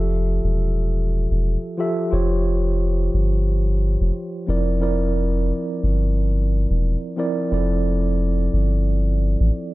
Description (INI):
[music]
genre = hip hop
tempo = 89 BPM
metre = 4/4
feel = swing 58% on 16ths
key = F major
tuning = A4 = 439 Hz
[part]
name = mellow tine electric piano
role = accompaniment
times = 0.0-9.7 s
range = F3 to E5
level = -24 LUFS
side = right 2 dB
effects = medium stereo tremolo, high-pass filter, low-pass filter
[part]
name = soft dub sub bass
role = bass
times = 0.0-9.5 s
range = E1 to A1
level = -19 LUFS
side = equal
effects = none
[sound]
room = little or no reverb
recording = dark, warm production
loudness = -18 LUFS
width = side -18 dB against mid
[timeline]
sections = 0.0-9.7 A section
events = none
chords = 0.0 Fmaj7; 2.1 Dbmaj7#11/F; 4.5 C7/F; 7.5 Dm9/F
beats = 0.10 0.77 1.45 | 2.12 2.79 3.47 4.14 | 4.82 5.49 6.17 6.84 | 7.51 8.19 8.86 9.54